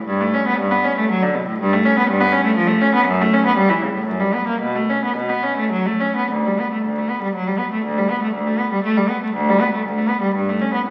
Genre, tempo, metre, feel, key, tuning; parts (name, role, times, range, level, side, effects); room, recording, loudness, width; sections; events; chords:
classical, baroque-style suite movement for unaccompanied cello; 100-126 BPM; 3/4; rubato; B minor, D major from 6.3 s; A4 = 440 Hz
clear cello; solo; 0.0-10.9 s; D2 to C#4; -19 LUFS; equal
wet recital hall reverb, RT60 1.6 s; very old 78 rpm record, vinyl crackle; -19 LUFS; mono
0.0-6.3 A section; 6.3-10.9 A section